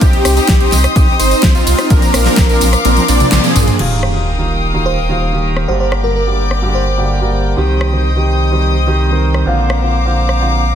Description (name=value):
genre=EDM, festival progressive house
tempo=127 BPM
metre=4/4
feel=straight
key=Eb major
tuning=A4 = 442 Hz
part: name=rich chamber string section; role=sustained chords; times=0.0-10.8 s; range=G4 to Eb6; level=-20 LUFS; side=left 3 dB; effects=sidechain pumping
part: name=wide unison lead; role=arpeggios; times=0.0-3.8 s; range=F4 to D5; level=-19 LUFS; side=equal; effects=analog chorus, sidechain pumping, ping-pong delay
part: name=supersaw chords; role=riff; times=0.0-3.8 s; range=F3 to D5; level=-17 LUFS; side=right 1 dB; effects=sidechain pumping, low-pass filter, ping-pong delay
part: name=saturated sub bass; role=bass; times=0.0-10.8 s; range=Eb1 to C2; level=-15 LUFS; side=equal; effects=sidechain pumping
part: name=electronic kick drum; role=drums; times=0.0-2.5 s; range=none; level=-11 LUFS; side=equal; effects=none
part: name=pop drum kit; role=drums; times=0.0-10.4 s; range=crash cymbal, hi-hat, rim click, snare drum, tambourine, toms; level=-17 LUFS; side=equal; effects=none
part: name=dark baby grand piano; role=accompaniment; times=3.8-10.6 s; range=G2 to Bb4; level=-18 LUFS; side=right 2 dB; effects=sidechain pumping, ping-pong delay
part: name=sub drop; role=sound effects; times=3.8-5.7 s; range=none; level=-22 LUFS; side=equal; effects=none
part: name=bell-like FM electric piano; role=melody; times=4.9-7.4 s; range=Bb4 to C5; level=-21 LUFS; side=right 2 dB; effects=chorus, tremolo, ping-pong delay
room=light reverb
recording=dense, heavily limited modern master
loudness=-10 LUFS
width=side -9 dB against mid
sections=0.0-3.8 A section; 3.8-10.8 B section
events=drop 0.0-3.8; kick drops out 2.8-3.8; drum fill 2.8-3.8; band accent 3.3; impact 3.8-5.7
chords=0.0 Cm; 1.9 Bbadd9; 3.8 Ebadd9; 5.7 Gm; 7.6 Cm; 9.5 Bbadd9